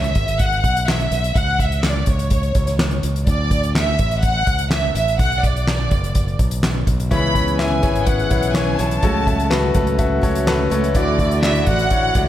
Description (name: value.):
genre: piano-driven pop.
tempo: 125 BPM.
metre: 4/4.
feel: straight.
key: unclear.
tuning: A4 = 440 Hz.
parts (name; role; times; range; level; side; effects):
warm symphonic violin section; melody; 0.0-12.3 s; C#5 to B5; -22 LUFS; right 1 dB; none.
modern bright fingered electric bass; bass; 0.0-12.3 s; F#1 to D2; -21 LUFS; equal; none.
soft-mallet drum kit; drums; 0.0-12.3 s; handclaps, hi-hat, kick drum, snare drum; -20 LUFS; equal; none.
bright concert grand piano; accompaniment; 7.1-12.3 s; C#3 to E5; -21 LUFS; left 5 dB; none.
picked steel-string acoustic guitar; riff; 7.1-12.3 s; C#3 to G#4; -24 LUFS; right 5 dB; none.
room: light reverb, studio ambience.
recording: none.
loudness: -16 LUFS.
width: side -12 dB against mid.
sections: 0.0-12.3 A section.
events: none.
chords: 0.0 C#m7 (rootless); 1.4 N.C.; 3.3 Dadd9; 5.2 Bm; 7.1 C#m7; 9.0 F#m/C#; 11.0 Dadd9.